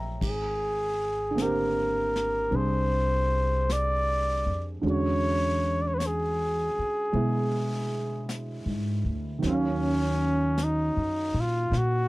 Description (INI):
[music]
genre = jazz ballad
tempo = 52 BPM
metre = 4/4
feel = swing 68% on 8ths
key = unclear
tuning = A4 = 440 Hz
[part]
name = warm concert grand piano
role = accompaniment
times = 0.0-12.1 s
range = D3 to Bb5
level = -31 LUFS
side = right 3 dB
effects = none
[part]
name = upright bass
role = bass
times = 0.0-12.1 s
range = Ab1 to B2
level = -29 LUFS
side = equal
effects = none
[part]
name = breathy trumpet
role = melody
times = 0.2-12.1 s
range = Db4 to D5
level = -28 LUFS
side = equal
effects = none
[part]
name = vintage brush drum kit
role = drums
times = 0.2-12.1 s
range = brushed snare drum, hi-hat, kick drum, ride cymbal, snare drum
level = -40 LUFS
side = left 1 dB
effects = none
[sound]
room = light reverb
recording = dry, close 1970s-style studio recording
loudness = -25 LUFS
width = side -20 dB against mid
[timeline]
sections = 0.0-12.1 A section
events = drum fill 0.0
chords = 0.2 Abmaj9#11; 4.8 E13; 9.4 Ebm9